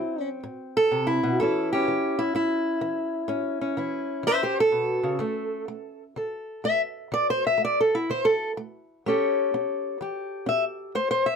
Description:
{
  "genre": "acoustic country blues, solo or duo",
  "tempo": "125 BPM",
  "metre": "4/4",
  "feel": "swing 66% on 8ths",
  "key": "A mixolydian",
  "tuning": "A4 = 440 Hz",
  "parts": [
    { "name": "fingerpicked old ladder-braced acoustic guitar", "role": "solo", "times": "0.0-11.4 s", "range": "A2 to E5", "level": "-23 LUFS", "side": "equal", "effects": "none" }
  ],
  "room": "light reverb",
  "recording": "close, detailed microphones",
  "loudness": "-23 LUFS",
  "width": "side -6 dB against mid",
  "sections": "0.0-11.4 A section",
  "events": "steel-string acoustic guitar solo 0.0-11.4",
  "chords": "0.0 D7 (rootless); 1.4 A7; 5.2 D5; 9.0 A7"
}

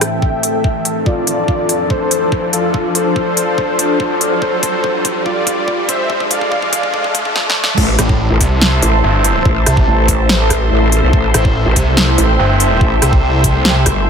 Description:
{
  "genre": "heavy wobble dubstep",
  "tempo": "143 BPM",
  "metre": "4/4",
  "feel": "half-time",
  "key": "A minor",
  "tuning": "A4 = 440 Hz",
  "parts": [
    { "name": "soft supersaw", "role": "melody", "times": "0.0-7.4 s", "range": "F4 to G5", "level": "-18 LUFS", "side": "equal", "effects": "low-pass filter, ping-pong delay" },
    { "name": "evolving wavetable pad", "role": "sustained chords", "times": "0.0-14.1 s", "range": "F2 to E5", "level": "-20 LUFS", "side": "left 1 dB", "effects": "phaser, built-in reverb, sidechain pumping" },
    { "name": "big-room dance drum kit", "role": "drums", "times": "0.0-13.9 s", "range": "crash cymbal, hi-hat, rim click, snare drum", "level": "-16 LUFS", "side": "equal", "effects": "overdrive" },
    { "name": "riser", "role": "sound effects", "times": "0.0-7.8 s", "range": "none", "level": "-22 LUFS", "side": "equal", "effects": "none" },
    { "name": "airy breathy pad", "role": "texture", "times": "0.0-14.1 s", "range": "C4 to A5", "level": "-21 LUFS", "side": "left 1 dB", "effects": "chorus, phaser, sidechain pumping" },
    { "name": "electronic kick drum", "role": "drums", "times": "0.2-13.9 s", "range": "none", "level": "-16 LUFS", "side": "equal", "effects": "none" },
    { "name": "growl bass", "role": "bass", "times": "7.8-14.1 s", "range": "G1 to B1", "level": "-14 LUFS", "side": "equal", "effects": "chorus, overdrive" },
    { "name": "snarling distorted saw bass", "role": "bass", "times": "8.0-13.8 s", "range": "G1 to C2", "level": "-14 LUFS", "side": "equal", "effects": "distortion, overdrive" }
  ],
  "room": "light reverb, digital ambience",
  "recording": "high-pass filter, faint mains hum",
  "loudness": "-11 LUFS",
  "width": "side -6 dB against mid",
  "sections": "0.0-7.8 A section; 7.8-14.1 B section",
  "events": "build-up 0.0-7.8; riser 0.0-7.8; filter sweep on ambient pad 0.0-7.8; filter sweep on supersaw synth 0.0-7.8; filter sweep 0.0-7.8; drum fill 1.1-7.4, 7.4-7.8; drop 7.8-14.1",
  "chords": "0.0 Am; 1.1 F6; 7.8 Am"
}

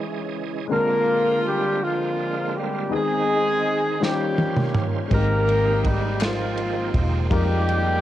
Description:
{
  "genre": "slow gospel",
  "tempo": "55 BPM (dotted quarters)",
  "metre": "6/8",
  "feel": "straight",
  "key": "Ab major",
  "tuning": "A4 = 439 Hz",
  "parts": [
    { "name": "mellow horn section", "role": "melody", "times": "0.0-8.0 s", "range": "F3 to Bb4", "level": "-22 LUFS", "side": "equal", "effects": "tape echo" },
    { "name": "warm baby grand piano", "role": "accompaniment", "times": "0.0-8.0 s", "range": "Ab2 to Eb5", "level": "-28 LUFS", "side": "left 7 dB", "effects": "none" },
    { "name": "bright tonewheel organ", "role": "sustained chords", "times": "0.0-8.0 s", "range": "C3 to Eb5", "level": "-31 LUFS", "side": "right 10 dB", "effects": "slow rotary speaker, chorus vibrato" },
    { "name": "natural country drum kit", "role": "drums", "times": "4.0-7.8 s", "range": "kick drum, ride cymbal, snare drum, toms", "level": "-25 LUFS", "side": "right 1 dB", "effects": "cassette tape" },
    { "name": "vintage muted fingered electric bass", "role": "bass", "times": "5.1-8.0 s", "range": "Fb1 to F2", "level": "-23 LUFS", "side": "equal", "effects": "none" },
    { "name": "group handclap", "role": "percussion", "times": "6.2-6.5 s", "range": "none", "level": "-33 LUFS", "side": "left 13 dB", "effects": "none" }
  ],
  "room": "moderate studio reverb, RT60 0.5 s",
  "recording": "home recording on cassette",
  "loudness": "-20 LUFS",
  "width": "side -13 dB against mid",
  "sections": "0.0-8.0 A section",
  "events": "drum fill 4.0-5.1",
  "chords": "0.0 Dbmadd9; 0.7 Bb9/D; 2.9 Ab/Eb; 4.0 Eb13; 5.1 Abmaj9; 7.3 Fm11"
}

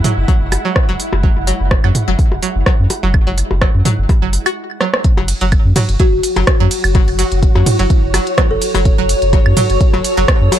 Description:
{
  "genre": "minimal techno",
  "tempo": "126 BPM",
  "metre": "4/4",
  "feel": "swing 54% on 16ths",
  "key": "F# minor",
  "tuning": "A4 = 440 Hz",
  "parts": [
    { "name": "string-like resonator pluck", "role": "riff", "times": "0.0-10.6 s", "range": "F#3 to F#4", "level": "-22 LUFS", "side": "right 1 dB", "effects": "chorus, sidechain pumping, tape echo" },
    { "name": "minimal click drum kit", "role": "drums", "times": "0.0-10.6 s", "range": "hi-hat, ride cymbal, rim click", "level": "-20 LUFS", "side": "right 1 dB", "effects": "none" },
    { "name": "electronic toms, percussion blips and claves", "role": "percussion", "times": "0.0-10.6 s", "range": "none", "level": "-19 LUFS", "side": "right 1 dB", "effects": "digital delay" },
    { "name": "granular cloud pad", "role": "texture", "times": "0.0-10.6 s", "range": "F#4 to F#5", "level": "-22 LUFS", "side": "equal", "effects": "built-in reverb, sidechain pumping" },
    { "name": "swarming drone", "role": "texture", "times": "0.0-10.6 s", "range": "F#3 to A4", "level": "-27 LUFS", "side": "equal", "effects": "built-in reverb, sidechain pumping" },
    { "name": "saturated sub bass", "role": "bass", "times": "0.2-10.5 s", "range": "F#1 to F#2", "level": "-16 LUFS", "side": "equal", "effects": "sidechain pumping" },
    { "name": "electronic kick drum", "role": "drums", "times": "0.3-10.4 s", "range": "none", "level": "-14 LUFS", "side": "equal", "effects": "none" },
    { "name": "kalimba", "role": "melody", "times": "6.0-8.9 s", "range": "E4 to A4", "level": "-22 LUFS", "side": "equal", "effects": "digital delay" }
  ],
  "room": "light reverb",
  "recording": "dark, warm production",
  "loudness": "-11 LUFS",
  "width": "side -11 dB against mid",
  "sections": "0.0-5.0 A section; 5.0-10.6 B section",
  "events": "break 4.6-5.0; drum fill 4.8; drop 5.0-10.6",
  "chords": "0.0 F#5"
}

